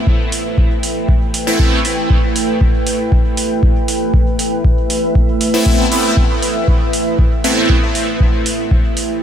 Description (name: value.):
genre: dub techno.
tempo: 118 BPM.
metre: 4/4.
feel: straight.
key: A minor.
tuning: A4 = 443 Hz.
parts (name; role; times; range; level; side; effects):
deep dark ambient pad; sustained chords; 0.0-9.2 s; A3 to G5; -19 LUFS; right 1 dB; chorus, built-in reverb, sidechain pumping.
electronic kick drum; drums; 0.1-8.8 s; none; -14 LUFS; equal; none.
electronic hi-hat; drums; 0.3-9.1 s; none; -21 LUFS; right 2 dB; none.
resonant sweep polysynth; stabs; 1.5-1.8, 5.5-7.8 s; A3 to E4; -19 LUFS; equal; chorus, phaser, dub echo.
room: light reverb.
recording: none.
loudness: -12 LUFS.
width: side -9 dB against mid.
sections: 0.0-9.2 A section.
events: none.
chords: 0.0 Amadd9.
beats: | 0.07 0.58 1.09 1.59 | 2.10 2.61 3.12 3.63 | 4.14 4.65 5.15 5.66 | 6.17 6.68 7.19 7.70 | 8.21 8.71 9.22.